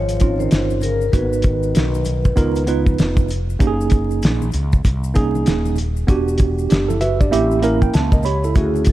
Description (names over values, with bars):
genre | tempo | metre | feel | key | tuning
hip hop, jazz-hop | 97 BPM | 4/4 | swing 62% on 16ths | unclear | A4 = 440 Hz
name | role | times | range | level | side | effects
vibraphone with medium mallets | melody | 0.0-2.9, 8.6-8.9 s | G#4 to Db5 | -25 LUFS | left 2 dB | analog delay
breathy trombone | second line | 0.0-2.9, 8.6-8.9 s | C#3 to F3 | -29 LUFS | left 7 dB | analog delay
mellow fretless electric bass | bass | 0.0-8.9 s | Eb1 to D2 | -21 LUFS | equal | none
cloth-damped thuddy drum kit | drums | 0.1-8.9 s | hi-hat, kick drum, snare drum | -17 LUFS | equal | none
maracas and congas | percussion | 0.1-8.9 s | none | -33 LUFS | left 5 dB | none
tine electric piano | accompaniment | 0.2-8.9 s | A3 to B5 | -20 LUFS | right 4 dB | medium stereo tremolo
room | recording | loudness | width
light reverb, studio ambience | vinyl crackle | -15 LUFS | side -15 dB against mid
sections
0.0-8.9 A section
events
tine electric piano fill 6.7-8.6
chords
0.0 Bbm11; 1.1 Abm7; 2.4 Db13; 3.6 Gb6; 6.1 Em7; 7.3 A7b9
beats
0.52 | 1.13 1.75 2.37 2.99 | 3.61 4.23 4.85 5.46 | 6.08 6.70 7.32 7.94 | 8.56